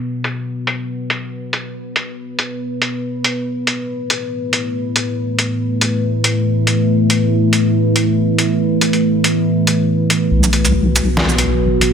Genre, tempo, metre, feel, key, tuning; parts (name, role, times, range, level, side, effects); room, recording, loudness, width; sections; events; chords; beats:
deep dubstep; 140 BPM; 4/4; swing 55% on 16ths, half-time; A4 = 439 Hz
deep dark ambient pad; sustained chords; 0.0-11.9 s; A3 to B4; -16 LUFS; equal; chorus, built-in reverb
trip hop sampler-style drum kit; drums; 0.2-11.9 s; hi-hat, shaker, snare drum; -17 LUFS; equal; overdrive, low-pass filter on hats, studio ambience, low-pass filter on perc, low-pass filter on snare
deep soft wobble bass; bass; 10.3-11.9 s; A1 to B1; -16 LUFS; equal; chorus, tube saturation
moderate lush hall reverb, RT60 2.0 s; -14 LUFS; side -7 dB against mid
0.0-10.3 A section; 10.3-11.9 B section
build-up 10.3-11.9
0.0 B5; 3.5 A5; 10.3 B5
| 0.03 0.46 0.89 1.31 | 1.74 2.17 2.60 3.03 | 3.46 3.89 4.31 4.74 | 5.17 5.60 6.03 6.46 | 6.89 7.31 7.74 8.17 | 8.60 9.03 9.46 9.89 | 10.31 10.74 11.17 11.60